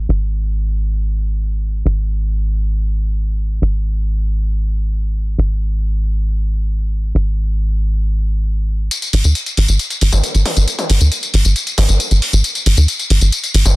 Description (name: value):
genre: uplifting trance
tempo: 136 BPM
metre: 4/4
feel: straight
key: unclear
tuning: A4 = 440 Hz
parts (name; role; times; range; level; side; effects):
- tight sequencer bass; bass; 0.0-13.7 s; G#1 to D#2; -14 LUFS; equal; none
- techno drum kit; drums; 8.9-13.7 s; hi-hat, tambourine, toms; -18 LUFS; left 2 dB; high-pass filter on hats, high-pass filter on perc, high-pass filter on toms, high-pass filter on room
room: little or no reverb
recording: dense, heavily limited modern master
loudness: -14 LUFS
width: side -20 dB against mid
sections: 0.0-8.9 A section; 8.9-13.8 B section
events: build-up 8.9-13.8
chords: none